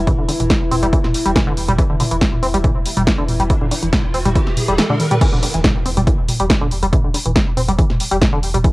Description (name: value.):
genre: driving peak-time techno.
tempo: 140 BPM.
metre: 4/4.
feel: straight.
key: E minor.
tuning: A4 = 440 Hz.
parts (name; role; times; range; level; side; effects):
saturated sub bass; bass; 0.0-8.6 s; E1; -22 LUFS; equal; tube saturation, sidechain pumping, low-pass filter.
metallic inharmonic drone; drone; 0.0-5.3 s; E3 to E4; -26 LUFS; left 2 dB; chorus, built-in reverb, sidechain pumping, cassette tape.
tight sequenced synth; riff; 0.1-8.7 s; D3 to C4; -21 LUFS; equal; chorus, sidechain pumping, cassette tape, tape echo.
electronic kick drum; drums; 0.1-8.7 s; none; -16 LUFS; equal; cassette tape.
techno drum kit; drums; 0.1-8.7 s; crash cymbal, hi-hat, snare drum, toms; -20 LUFS; equal; overdrive, cassette tape.
riser and impact; sound effects; 2.8-6.9 s; none; -27 LUFS; right 1 dB; none.
room: digital ambience.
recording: home recording on cassette.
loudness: -14 LUFS.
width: side -21 dB against mid.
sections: 0.0-5.2 A section; 5.2-8.7 B section.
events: riser 2.8-5.2; drum fill 4.9-5.2; drop 5.2-8.7; impact 5.2-6.9.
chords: none.